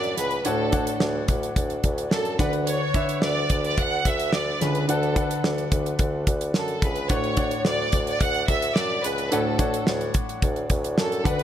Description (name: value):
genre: piano-driven pop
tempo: 108 BPM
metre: 4/4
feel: straight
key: D major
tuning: A4 = 440 Hz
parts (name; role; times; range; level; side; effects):
- warm studio violin section; melody; 0.0-11.4 s; A4 to F#5; -28 LUFS; right 2 dB; none
- clear baby grand piano; accompaniment; 0.0-11.4 s; A2 to F#5; -28 LUFS; left 1 dB; none
- mellow bassoon; bass; 0.0-11.4 s; C#2 to F#2; -28 LUFS; equal; none
- damped 70s drum kit; drums; 0.0-11.4 s; hi-hat, kick drum, snare drum; -25 LUFS; equal; none
room: light reverb, studio ambience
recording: none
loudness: -21 LUFS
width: side -10 dB against mid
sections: 0.0-11.4 A section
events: none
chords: 0.0 Dmaj7; 2.4 Bm; 7.1 Dmaj7